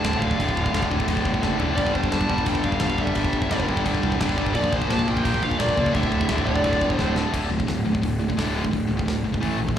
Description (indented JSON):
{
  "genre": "heavy metal",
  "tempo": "173 BPM",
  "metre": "4/4",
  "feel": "straight",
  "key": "D minor",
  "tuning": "A4 = 439 Hz",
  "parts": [
    { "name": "high-gain lead guitar", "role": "melody", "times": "0.0-7.1 s", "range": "C5 to A5", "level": "-28 LUFS", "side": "right 1 dB", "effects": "distortion, tape echo" },
    { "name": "distorted electric guitar", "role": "riff", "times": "0.0-9.8 s", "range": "D2 to Bb3", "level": "-29 LUFS", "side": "right 12 dB", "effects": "overdrive, slapback echo" },
    { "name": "high-gain distorted guitar", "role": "riff", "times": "0.0-9.8 s", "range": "D2 to Bb3", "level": "-25 LUFS", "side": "left 6 dB", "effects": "distortion, slapback echo" },
    { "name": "fuzz picked electric bass", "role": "bass", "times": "0.0-9.7 s", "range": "D1 to D2", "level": "-26 LUFS", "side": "right 1 dB", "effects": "overdrive" },
    { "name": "tight metal drum kit", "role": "drums", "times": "0.0-9.8 s", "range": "crash cymbal, hi-hat, kick drum, snare drum, toms", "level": "-28 LUFS", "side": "equal", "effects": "none" }
  ],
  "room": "small room ambience",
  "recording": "live gig heard through the venue's PA, club reverb",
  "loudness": "-20 LUFS",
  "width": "side -10 dB against mid",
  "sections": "0.0-7.3 A section; 7.3-9.8 B section",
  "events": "drum fill 1.4-1.8, 7.0-7.3",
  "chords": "0.0 Dm; 1.8 G5; 4.5 Bb; 5.9 D5; 9.4 A5"
}